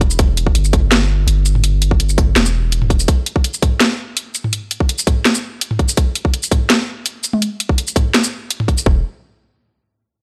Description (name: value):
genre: half-time drum and bass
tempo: 166 BPM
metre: 4/4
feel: half-time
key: E minor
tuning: A4 = 440 Hz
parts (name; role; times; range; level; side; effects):
- long sustained 808-style bass; bass; 0.0-3.1, 8.9-9.0 s; E1 to G1; -18 LUFS; equal; none
- drum and bass drum kit; drums; 0.0-8.8 s; hi-hat, shaker, snare drum, toms; -19 LUFS; equal; overdrive, studio reverb
- electronic kick drum; drums; 0.0-8.9 s; none; -17 LUFS; equal; overdrive, studio reverb
room: little or no reverb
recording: dry, gritty hardware recording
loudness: -16 LUFS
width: mono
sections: 0.0-8.9 A section; 8.9-10.2 B section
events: none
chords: none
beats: | 0.19 0.55 0.91 1.27 | 1.64 2.00 2.36 2.72 | 3.08 3.44 3.81 4.17 | 4.53 4.89 5.25 5.61 | 5.97 6.33 6.70 7.06 | 7.42 7.78 8.14 8.50 | 8.87